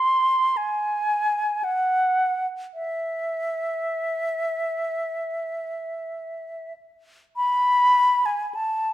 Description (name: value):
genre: classical, free, expressive piece for unaccompanied flute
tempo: free time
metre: none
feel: none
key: unclear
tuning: A4 = 440 Hz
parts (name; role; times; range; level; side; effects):
- concert flute; solo; 0.0-8.9 s; E5 to B#5; -21 LUFS; equal; none
room: moderate recital hall reverb, RT60 1.4 s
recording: none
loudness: -21 LUFS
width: side -14 dB against mid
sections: 0.0-8.9 A section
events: none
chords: none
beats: free time